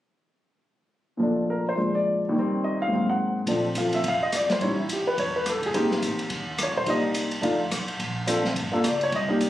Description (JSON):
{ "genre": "jazz piano trio", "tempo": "212 BPM", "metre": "4/4", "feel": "swing 60% on 8ths", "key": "Bb major", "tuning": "A4 = 441 Hz", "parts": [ { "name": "warm baby grand piano", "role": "melody", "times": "1.2-9.5 s", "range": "Eb2 to Gb5", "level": "-23 LUFS", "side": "equal", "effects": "plate reverb" }, { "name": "upright bass", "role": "bass", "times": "3.5-9.5 s", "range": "E1 to F2", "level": "-35 LUFS", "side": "equal", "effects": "none" }, { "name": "vintage drum kit", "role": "drums", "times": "3.5-9.5 s", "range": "hi-hat, kick drum, ride cymbal, rim click, snare drum", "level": "-30 LUFS", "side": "equal", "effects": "none" } ], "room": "light reverb", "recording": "recorded on a phone in the room, club reverb, compression", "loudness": "-23 LUFS", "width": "side -13 dB against mid", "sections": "1.2-3.5 A section; 3.5-9.5 B section", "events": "none", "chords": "1.2 Bbmaj7; 1.8 Bb7; 2.3 Eb6; 2.9 Ab9; 3.5 Bbmaj9; 4.6 A7; 5.7 Abmaj9; 6.9 Cm7; 7.4 F6; 8.0 Bbmaj9; 8.6 G5", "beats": "| 1.20 1.48 1.77 2.05 | 2.34 2.62 2.90 3.19 | 3.47 3.76 4.04 4.32 | 4.61 4.89 5.17 5.46 | 5.74 6.02 6.30 6.59 | 6.87 7.15 7.43 7.72 | 8.00 8.28 8.56 8.85 | 9.13 9.41" }